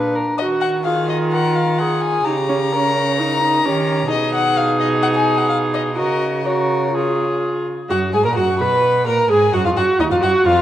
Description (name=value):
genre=quick classical-period movement for string quartet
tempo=128 BPM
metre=4/4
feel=straight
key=Eb minor, F# major from 4.1 s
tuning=A4 = 443 Hz
part: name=warm violin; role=melody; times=0.0-10.6 s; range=C#5 to B5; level=-22 LUFS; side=left 6 dB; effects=none
part: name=dark violin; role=second line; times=0.0-10.6 s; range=D#4 to Cb5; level=-21 LUFS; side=left 1 dB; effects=none
part: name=warm viola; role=accompaniment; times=0.0-10.6 s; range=Db4 to B4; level=-20 LUFS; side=right 2 dB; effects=none
part: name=rich cello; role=bass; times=0.0-10.6 s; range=D#2 to Eb3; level=-23 LUFS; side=right 4 dB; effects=none
room=moderate scoring stage reverb, RT60 1.9 s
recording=worn, warbling old tape, cassette tape, warbly pitch drift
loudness=-15 LUFS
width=side -12 dB against mid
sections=0.0-7.9 A section; 7.9-10.6 B section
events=none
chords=0.4 Ebm; 2.3 Eb7/Db; 4.1 G#m/B; 6.0 F#/C#; 6.9 C#; 7.9 F#; 8.8 G#m9; 9.8 D#m